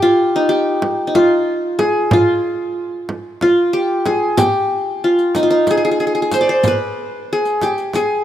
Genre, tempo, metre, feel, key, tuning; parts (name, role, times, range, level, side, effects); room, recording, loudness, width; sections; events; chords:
Turkish makam ensemble; 185 BPM (eighths); 7/8; straight; F makam nikriz; A4 = 440 Hz
qanun; melody; 0.0-8.2 s; Eb4 to D5; -14 LUFS; equal
frame drum; percussion; 0.8-8.1 s; -22 LUFS; right 2 dB
riq; percussion; 4.4-8.1 s; -28 LUFS; left 5 dB
light reverb, studio reverb; rough home demo mix; -14 LUFS; side -11 dB against mid
0.0-8.2 A section